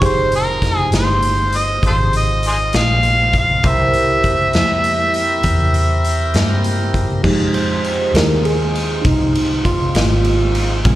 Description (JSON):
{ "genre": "slow blues", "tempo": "66 BPM (dotted quarters)", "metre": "12/8", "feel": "straight", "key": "F minor", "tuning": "A4 = 440 Hz", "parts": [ { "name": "mellow harmonica", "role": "melody", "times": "0.0-6.7 s", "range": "F4 to F5", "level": "-17 LUFS", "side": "equal", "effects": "overdrive, slapback echo" }, { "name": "overdriven tine electric piano", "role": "accompaniment", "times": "0.0-11.0 s", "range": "Db3 to C5", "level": "-21 LUFS", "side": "right 3 dB", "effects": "phaser, slapback echo" }, { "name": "tonewheel organ", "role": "sustained chords", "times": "0.0-11.0 s", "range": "Ab3 to Bb4", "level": "-27 LUFS", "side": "left 1 dB", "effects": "slow rotary speaker" }, { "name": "vintage muted fingered electric bass", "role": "bass", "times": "0.0-11.0 s", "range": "F1 to G2", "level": "-18 LUFS", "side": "equal", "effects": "none" }, { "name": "raw garage drum kit", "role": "drums", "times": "0.0-11.0 s", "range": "crash cymbal, hi-hat, kick drum, ride cymbal, snare drum", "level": "-20 LUFS", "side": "left 1 dB", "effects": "none" } ], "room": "small room reverb", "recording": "live gig heard through the venue's PA, club reverb", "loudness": "-13 LUFS", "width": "side -15 dB against mid", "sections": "0.0-7.2 A section; 7.2-11.0 B section", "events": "tine electric piano solo 7.2-11.0", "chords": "0.0 Fm7; 3.6 C7; 7.2 Fm7", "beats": "| 0.02 0.93 1.83 2.73 | 3.64 4.54 5.44 6.34 | 7.25 8.15 9.05 9.95 | 10.85" }